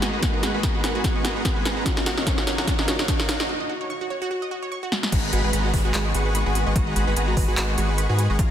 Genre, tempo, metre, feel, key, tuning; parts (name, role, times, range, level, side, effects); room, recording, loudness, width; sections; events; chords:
future bass; 147 BPM; 4/4; swing 55% on 16ths, half-time; G# dorian; A4 = 437 Hz
soft round pluck; accompaniment; 0.0-3.5 s; B3 to A#4; -34 LUFS; right 2 dB
clear studio string section; sustained chords; 0.0-8.5 s; C#3 to F#4; -33 LUFS; left 2 dB; sidechain pumping
wide unison pluck; arpeggios; 0.0-8.5 s; E#4 to C#6; -31 LUFS; right 3 dB; sidechain pumping, tape echo
dense compressed supersaw; riff; 0.0-8.5 s; G#3 to C#6; -28 LUFS; right 1 dB; sidechain pumping, tape echo
saturated sub bass; bass; 0.0-8.5 s; G#1 to G#2; -24 LUFS; equal; sidechain pumping, high-pass filter
big-room dance drum kit; drums; 0.0-8.5 s; crash cymbal, handclaps, hi-hat, snare drum; -26 LUFS; equal; overdrive
riser and downlifter; sound effects; 0.0-8.4 s; -33 LUFS; right 1 dB
electronic kick drum; drums; 0.2-8.5 s; -25 LUFS; equal; overdrive
light reverb; dense, heavily limited modern master; -20 LUFS; side -10 dB against mid
0.0-5.1 A section; 5.1-8.5 B section
build-up 0.0-5.1; drum fill 0.0-3.5, 4.9; riser 0.0-3.5; filter sweep on string section 0.0-5.1; break 3.5-5.1; drop 5.1-8.5
0.0 G#m7; 1.9 D#m7; 5.1 G#m7